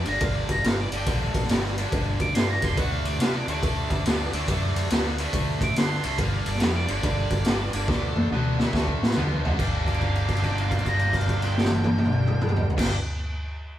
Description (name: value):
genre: blues rock power trio and southern rock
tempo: 141 BPM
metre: 4/4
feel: swing 65% on 8ths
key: G minor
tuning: A4 = 440 Hz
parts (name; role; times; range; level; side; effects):
- octave-fuzz lead guitar; melody; 0.0-12.9 s; D5 to D6; -31 LUFS; right 1 dB; distortion
- overdriven tonewheel organ; sustained chords; 0.0-12.9 s; A3 to C#5; -41 LUFS; right 3 dB; none
- distorted electric guitar; riff; 0.0-13.0 s; G2 to G4; -30 LUFS; equal; overdrive
- overdriven fingered electric bass; bass; 0.1-12.9 s; F1 to D3; -28 LUFS; equal; none
- raw garage drum kit; drums; 0.1-12.9 s; crash cymbal, kick drum, ride cymbal, snare drum, toms; -25 LUFS; equal; none
room: moderate studio reverb, RT60 0.8 s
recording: band playing live in one room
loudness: -22 LUFS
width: side -12 dB against mid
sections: 0.0-9.6 A section; 9.6-13.0 B section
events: drum fill 7.9-9.6; held note 9.6-12.7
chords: 0.0 Gm9; 2.8 D7#9; 6.2 Gm9; 7.9 D7#9; 9.6 Gm9